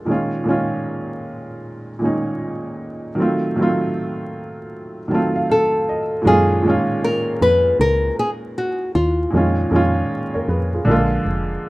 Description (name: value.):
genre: lo-fi hip hop.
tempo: 78 BPM.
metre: 4/4.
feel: swing 65% on 16ths.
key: F# major.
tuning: A4 = 440 Hz.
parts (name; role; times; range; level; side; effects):
warm upright piano; accompaniment; 0.0-11.7 s; A#2 to A5; -20 LUFS; right 1 dB; cassette tape.
nylon-string guitar; melody; 5.5-9.3 s; E#4 to B4; -18 LUFS; left 1 dB; none.
woody FM bass; bass; 6.3-11.6 s; E#1 to F#2; -20 LUFS; equal; none.
room: light reverb.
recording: rough home demo mix, vinyl crackle.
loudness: -16 LUFS.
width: side -20 dB against mid.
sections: 0.0-6.2 A section; 6.2-11.7 B section.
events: upright piano fill 4.7-6.2.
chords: 0.1 D#5; 3.2 F7b9; 6.2 F#maj9; 9.3 C#13/E#; 10.9 A#7.